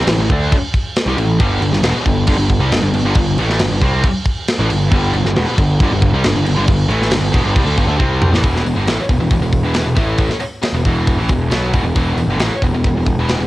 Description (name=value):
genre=hard rock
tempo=136 BPM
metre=4/4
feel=straight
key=E minor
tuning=A4 = 440 Hz
part: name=heavy high-gain guitar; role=riff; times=0.0-13.5 s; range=E2 to D4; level=-19 LUFS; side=equal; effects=distortion, cassette tape
part: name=fuzz picked electric bass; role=bass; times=0.0-13.5 s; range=E1 to D2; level=-17 LUFS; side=equal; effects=overdrive
part: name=tight metal drum kit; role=drums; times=0.1-13.4 s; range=crash cymbal, hi-hat, kick drum, snare drum, toms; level=-17 LUFS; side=equal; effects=none
room=light reverb, small room ambience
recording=home recording on cassette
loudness=-13 LUFS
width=side -17 dB against mid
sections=0.0-8.4 A section; 8.4-13.5 B section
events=drum fill 8.0-8.4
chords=0.0 A5; 1.4 G5; 8.4 E5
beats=0.08 0.52 0.96 | 1.40 1.84 2.28 2.72 | 3.16 3.60 4.04 4.48 | 4.92 5.36 5.80 6.24 | 6.68 7.12 7.56 8.00 | 8.44 8.88 9.32 9.76 | 10.20 10.64 11.09 11.53 | 11.97 12.41 12.85 13.29